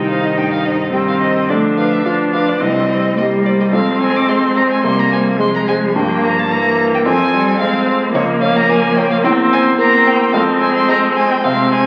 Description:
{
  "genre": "quick classical-period movement for piano quartet",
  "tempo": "108 BPM",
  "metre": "4/4",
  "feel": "rubato",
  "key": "F minor from 8.1 s",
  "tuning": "A4 = 441 Hz",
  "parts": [
    { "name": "rich violin", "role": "melody", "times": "0.0-11.9 s", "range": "Db5 to D6", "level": "-21 LUFS", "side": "equal", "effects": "none" },
    { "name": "rich cello", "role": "second line", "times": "0.0-11.9 s", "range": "Eb3 to Bb3", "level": "-23 LUFS", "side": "equal", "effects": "none" },
    { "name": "warm grand piano", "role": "accompaniment", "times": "0.0-11.9 s", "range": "C2 to Db5", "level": "-20 LUFS", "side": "equal", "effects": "none" },
    { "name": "warm viola", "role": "accompaniment", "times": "0.0-11.9 s", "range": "G3 to Eb4", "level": "-19 LUFS", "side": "equal", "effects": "none" }
  ],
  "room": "wet recital hall reverb, RT60 1.6 s",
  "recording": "very old 78 rpm record, vinyl crackle",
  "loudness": "-14 LUFS",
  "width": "mono",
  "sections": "0.0-11.9 A section",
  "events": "none",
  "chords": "0.0 Cm; 1.5 Bdim/D; 2.6 Cm; 3.7 Fm; 6.0 Edim/G; 7.1 Fm; 8.1 Bbm/Db; 9.2 C7/E; 10.3 Fm",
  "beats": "0.36 0.93 | 1.49 2.05 2.61 3.17 | 3.73 4.29 4.84 5.40 | 5.96 6.51 7.06 7.60 | 8.14 8.69 9.24 9.79 | 10.34 10.89 11.44"
}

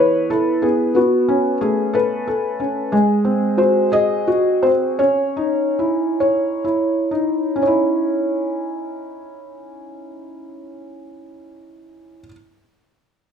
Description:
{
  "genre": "children's music, lullaby",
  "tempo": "39-62 BPM (dotted quarters)",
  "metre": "6/8",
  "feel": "straight",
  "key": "C# minor",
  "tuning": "A4 = 440 Hz",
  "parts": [
    { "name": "felt-muted upright piano", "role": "solo", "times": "0.0-12.3 s", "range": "E3 to D#5", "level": "-17 LUFS", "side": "equal", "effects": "none" }
  ],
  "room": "moderate large studio reverb, RT60 1.1 s",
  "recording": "band playing live in one room",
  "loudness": "-16 LUFS",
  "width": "side -7 dB against mid",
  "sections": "0.0-7.6 A section; 7.6-13.3 B section",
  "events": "slowing down 2.9-7.6",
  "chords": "0.0 E; 1.0 Aadd9; 2.9 G#7; 5.0 C#madd9",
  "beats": "| 0.95 1.94 | 2.92 3.92 | 4.99 6.20 | 7.62 9.15 | 10.66 12.18"
}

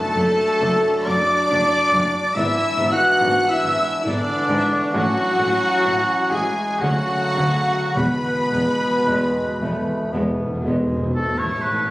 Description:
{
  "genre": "classical",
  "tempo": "49-72 BPM",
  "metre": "3/4",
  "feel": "rubato",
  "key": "unclear",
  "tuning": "A4 = 439 Hz",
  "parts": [
    { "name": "warm symphonic violin section", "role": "melody", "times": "0.0-11.9 s", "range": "C#5 to F#6", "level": "-28 LUFS", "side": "left 1 dB", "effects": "none" },
    { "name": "mellow clarinet", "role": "second line", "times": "0.0-10.1 s", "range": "D4 to F#5", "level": "-25 LUFS", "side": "equal", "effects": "none" },
    { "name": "mellow hollow concert flute", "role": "second line", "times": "0.0-10.1 s", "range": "D5 to F#6", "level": "-27 LUFS", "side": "equal", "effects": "none" },
    { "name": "rich symphonic violin section", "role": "second line", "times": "0.0-11.9 s", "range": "D4 to F#5", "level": "-30 LUFS", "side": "equal", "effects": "none" },
    { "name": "warm oboe", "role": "second line", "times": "0.0-11.9 s", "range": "D4 to F#5", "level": "-25 LUFS", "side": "equal", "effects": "none" },
    { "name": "clear trombone section", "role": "sustained chords", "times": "0.0-10.8 s", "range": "B2 to D4", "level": "-30 LUFS", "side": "right 1 dB", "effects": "none" },
    { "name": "warm French horn section", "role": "sustained chords", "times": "0.0-10.1 s", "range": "D3 to F#4", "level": "-25 LUFS", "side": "left 1 dB", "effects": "none" },
    { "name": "concert harp", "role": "arpeggios", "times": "0.0-11.9 s", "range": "F#2 to G#4", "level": "-33 LUFS", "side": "left 1 dB", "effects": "none" },
    { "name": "dark trumpet section", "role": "stabs", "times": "0.0-10.1 s", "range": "D4 to F#5", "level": "-27 LUFS", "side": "right 1 dB", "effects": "none" },
    { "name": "rich symphonic viola section", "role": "accompaniment", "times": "0.2-10.7 s", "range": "G#3 to D4", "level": "-32 LUFS", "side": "equal", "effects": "none" },
    { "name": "rich symphonic cello section", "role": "bass", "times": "0.2-11.9 s", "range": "D2 to A2", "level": "-29 LUFS", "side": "equal", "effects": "none" },
    { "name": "rich symphonic double bass section", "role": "bass", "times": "0.2-11.9 s", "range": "E1 to D2", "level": "-30 LUFS", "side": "equal", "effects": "none" },
    { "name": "timpani", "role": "percussion", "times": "8.0-11.1 s", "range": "E2", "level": "-26 LUFS", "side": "equal", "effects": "none" },
    { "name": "warm bassoon", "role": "accompaniment", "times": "9.1-11.1 s", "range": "G#3 to B3", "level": "-30 LUFS", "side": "right 1 dB", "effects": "none" }
  ],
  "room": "wet concert hall reverb, RT60 2.2 s",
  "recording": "recorded on a phone in the room, studio reverb",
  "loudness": "-17 LUFS",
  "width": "side -17 dB against mid",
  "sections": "0.0-11.1 A section",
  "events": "timpani fill 8.0-11.1",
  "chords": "0.0 D/F#; 2.3 E7/G#; 4.9 A; 6.8 Dmaj7; 8.0 E; 11.1 A",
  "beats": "0.61 1.50 | 2.35 3.20 4.06 | 4.93 5.84 6.79 | 7.96 9.07 10.13 | 11.15"
}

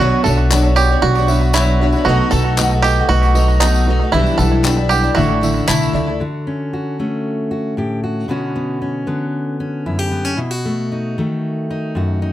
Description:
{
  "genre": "indie folk with a building arrangement",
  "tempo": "115 BPM",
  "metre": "4/4",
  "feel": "straight",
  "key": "unclear",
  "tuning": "A4 = 442 Hz",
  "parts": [
    { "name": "felt-muted upright piano", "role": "accompaniment", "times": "0.0-6.2 s", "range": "A1 to G5", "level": "-21 LUFS", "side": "right 5 dB", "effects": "none" },
    { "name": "picked twelve-string acoustic guitar", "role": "accompaniment", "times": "0.0-6.2 s", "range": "A2 to C#5", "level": "-19 LUFS", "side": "left 4 dB", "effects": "none" },
    { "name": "bluegrass banjo", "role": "arpeggios", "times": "0.0-6.2 s", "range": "D#4 to A4", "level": "-19 LUFS", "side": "right 5 dB", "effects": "analog delay" },
    { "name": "upright bass", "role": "bass", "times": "0.0-6.2 s", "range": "A1 to C#2", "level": "-16 LUFS", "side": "equal", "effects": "none" },
    { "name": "tambourine", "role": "percussion", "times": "0.3-6.0 s", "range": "none", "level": "-29 LUFS", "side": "left 5 dB", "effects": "none" },
    { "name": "group handclap", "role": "percussion", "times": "0.5-5.8 s", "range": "none", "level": "-21 LUFS", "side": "left 4 dB", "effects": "none" },
    { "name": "fingerpicked steel-string acoustic guitar", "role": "accompaniment", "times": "6.2-12.3 s", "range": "F#2 to G4", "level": "-19 LUFS", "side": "left 1 dB", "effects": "none" }
  ],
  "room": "light reverb, small room reverb",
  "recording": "none",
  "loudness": "-14 LUFS",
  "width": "side -13 dB against mid",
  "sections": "0.0-6.2 A section; 6.2-12.3 B section",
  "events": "none",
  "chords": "0.0 Bmadd9; 2.1 B7; 4.1 Em7/B; 5.2 Asus4; 6.2 Dmaj7; 8.3 Bmadd9; 10.4 B7",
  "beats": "0.51 1.02 1.54 | 2.06 2.58 3.09 3.61 | 4.13 4.65 5.17 5.69 | 6.21 6.73 7.25 7.77 | 8.30 8.82 9.34 9.87 | 10.39 10.91 11.44 11.96"
}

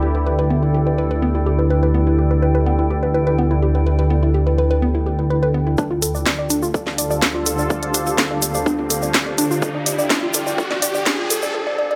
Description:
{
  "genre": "melodic techno",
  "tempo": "125 BPM",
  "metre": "4/4",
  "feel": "straight",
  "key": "D dorian",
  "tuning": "A4 = 440 Hz",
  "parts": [
    { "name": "sweeping resonant pad", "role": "sustained chords", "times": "0.0-11.5 s", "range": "D2 to A4", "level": "-26 LUFS", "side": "equal", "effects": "chorus, sidechain pumping" },
    { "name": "woody wave-folded pluck", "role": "arpeggios", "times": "0.0-12.0 s", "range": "B3 to D5", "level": "-25 LUFS", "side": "equal", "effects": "chorus, sidechain pumping, dub echo" },
    { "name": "fat analog bass", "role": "bass", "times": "0.0-5.8 s", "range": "D2", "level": "-20 LUFS", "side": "equal", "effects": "sidechain pumping" },
    { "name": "analog drone", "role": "drone", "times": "0.0-5.8 s", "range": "D3 to A3", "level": "-33 LUFS", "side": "equal", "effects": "none" },
    { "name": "granular cloud pad", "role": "texture", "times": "0.0-11.5 s", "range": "D4 to G5", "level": "-28 LUFS", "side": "equal", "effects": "built-in reverb, sidechain pumping" },
    { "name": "electronic kick drum", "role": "drums", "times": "5.8-11.2 s", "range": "none", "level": "-25 LUFS", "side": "equal", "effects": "high-pass filter on kick, small room reverb" },
    { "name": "tube shaker", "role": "percussion", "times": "5.8-11.5 s", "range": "none", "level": "-28 LUFS", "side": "equal", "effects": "none" },
    { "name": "riser", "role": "sound effects", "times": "7.3-11.5 s", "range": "none", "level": "-30 LUFS", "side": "equal", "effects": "none" },
    { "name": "house drum kit", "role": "drums", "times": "6.0-11.4 s", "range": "hi-hat, snare drum", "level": "-22 LUFS", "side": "equal", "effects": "low-pass filter on hats, small room reverb, low-pass filter on snare" }
  ],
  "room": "moderate lush hall reverb, RT60 1.8 s",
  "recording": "high-pass filter",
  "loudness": "-19 LUFS",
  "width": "mono",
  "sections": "0.0-5.8 A section; 5.8-12.0 B section",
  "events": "build-up 5.8-12.0; riser 7.3-11.5",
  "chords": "0.0 Em/D; 5.8 Dm",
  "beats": "| 0.02 0.50 0.98 1.46 | 1.94 2.42 2.90 3.38 | 3.86 4.34 4.82 5.30 | 5.78 6.26 6.74 7.22 | 7.70 8.18 8.66 9.14 | 9.62 10.10 10.58 11.06 | 11.54"
}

